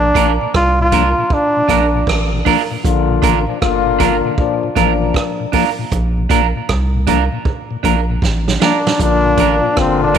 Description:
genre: roots reggae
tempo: 78 BPM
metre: 4/4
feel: swing 65% on 16ths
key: Bb major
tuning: A4 = 439 Hz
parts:
  - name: bright trombone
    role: melody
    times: 0.0-2.1, 8.6-10.2 s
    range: C4 to F4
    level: -15 LUFS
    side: equal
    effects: tape echo
  - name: mellow tonewheel organ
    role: accompaniment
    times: 0.0-10.2 s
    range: Bb2 to D4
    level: -23 LUFS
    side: left 9 dB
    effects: chorus vibrato
  - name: soft dub sub bass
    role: bass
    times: 0.0-10.2 s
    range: G1 to C2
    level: -18 LUFS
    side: equal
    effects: none
  - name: clean electric guitar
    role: accompaniment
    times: 0.1-10.2 s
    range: D4 to Bb4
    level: -19 LUFS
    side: right 12 dB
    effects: tape echo
  - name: vintage drum kit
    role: drums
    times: 0.2-10.2 s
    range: hi-hat, kick drum, rim click, snare drum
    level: -20 LUFS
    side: right 3 dB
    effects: none
  - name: warm trombone section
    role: second line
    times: 2.8-10.2 s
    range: Bb2 to F4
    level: -18 LUFS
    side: left 9 dB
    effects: tape echo
room: moderate plate reverb, RT60 3.5 s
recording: 1960s-style stereo with parts hard left and right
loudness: -12 LUFS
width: side -8 dB against mid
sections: 0.0-10.2 A section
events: drum fill 8.2-9.0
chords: 0.0 Bb

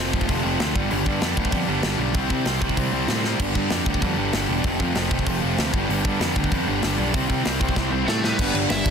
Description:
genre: punk rock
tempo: 192 BPM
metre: 4/4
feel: straight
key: G mixolydian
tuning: A4 = 440 Hz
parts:
  - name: sludgy distorted guitar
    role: riff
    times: 0.0-8.9 s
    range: F2 to E4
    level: -25 LUFS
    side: right 14 dB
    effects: overdrive
  - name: tight distorted guitar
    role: riff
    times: 0.0-8.9 s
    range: F2 to C4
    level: -26 LUFS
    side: left 15 dB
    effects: distortion
  - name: growling picked electric bass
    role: bass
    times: 0.0-8.9 s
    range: E1 to C3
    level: -27 LUFS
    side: equal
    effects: overdrive
  - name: tight metal drum kit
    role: drums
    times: 0.1-8.9 s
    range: crash cymbal, hi-hat, kick drum, snare drum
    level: -25 LUFS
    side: equal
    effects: none
  - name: cranked stack guitar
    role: melody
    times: 8.1-8.9 s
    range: A3 to E5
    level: -26 LUFS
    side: equal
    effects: overdrive
room: little or no reverb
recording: dense, heavily limited modern master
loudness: -20 LUFS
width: side -6 dB against mid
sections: 0.0-8.4 A section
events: drum fill 3.2, 7.8-8.4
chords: 0.0 F; 0.8 G; 2.1 C; 3.4 G; 4.6 F; 5.7 G; 7.1 C; 8.4 G

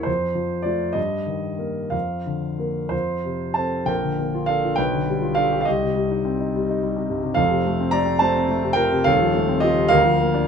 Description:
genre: classical, romantic character piece for solo piano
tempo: 60-72 BPM (dotted quarters)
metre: 6/8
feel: rubato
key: Bb major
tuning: A4 = 441 Hz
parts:
  - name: warm concert grand piano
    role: solo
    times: 0.0-10.5 s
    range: Eb1 to Bb5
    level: -19 LUFS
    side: equal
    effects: none
room: light reverb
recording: minimal, uncompressed stereo recording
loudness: -19 LUFS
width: side -6 dB against mid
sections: 0.0-3.9 A section; 3.9-10.5 B section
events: none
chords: 0.1 F; 1.0 Eb/G; 1.9 Bb/F; 2.9 F; 3.9 Bb; 4.8 G7/B; 5.7 Cm; 7.4 F; 9.1 F7/Eb; 9.9 Bb/D

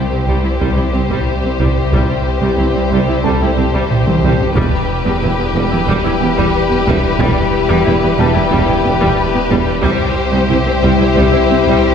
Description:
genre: cinematic, hybrid orchestral and electronic film score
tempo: 91 BPM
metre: 4/4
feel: straight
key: unclear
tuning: A4 = 440 Hz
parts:
  - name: warm symphonic violin section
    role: melody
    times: 0.0-11.9 s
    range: B4 to C5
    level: -21 LUFS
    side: left 5 dB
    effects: none
  - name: warm symphonic violin section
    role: second line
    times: 0.0-11.9 s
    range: G4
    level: -21 LUFS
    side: left 2 dB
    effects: none
  - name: warm French horn section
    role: sustained chords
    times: 0.0-11.9 s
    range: G3 to E4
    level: -20 LUFS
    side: left 4 dB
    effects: none
  - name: wide detuned saw bass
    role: bass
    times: 0.0-11.9 s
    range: E1 to C2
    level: -21 LUFS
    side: equal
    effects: chorus
  - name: felt-muted upright piano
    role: texture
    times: 0.0-11.9 s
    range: G4 to A5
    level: -29 LUFS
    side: left 1 dB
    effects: none
  - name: dark chamber viola section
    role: accompaniment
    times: 0.1-11.8 s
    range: G3 to E4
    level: -21 LUFS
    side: right 2 dB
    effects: none
  - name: warm symphonic cello section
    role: bass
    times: 0.1-11.7 s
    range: C2 to E2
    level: -20 LUFS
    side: right 3 dB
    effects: none
  - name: mellow tuba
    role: bass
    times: 0.3-11.6 s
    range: E1 to C2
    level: -22 LUFS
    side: right 3 dB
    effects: none
  - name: rich symphonic double bass section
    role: bass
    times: 0.3-11.6 s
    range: E1 to C2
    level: -21 LUFS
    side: right 2 dB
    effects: none
  - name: taiko ensemble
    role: drums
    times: 0.6-11.9 s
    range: none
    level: -21 LUFS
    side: equal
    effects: none
room: wet scoring stage reverb, RT60 1.8 s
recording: heard from further back in the room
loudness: -12 LUFS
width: side -7 dB against mid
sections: 0.0-11.9 A section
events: drum fill 3.9-4.6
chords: 0.0 C; 4.6 Em; 9.8 C

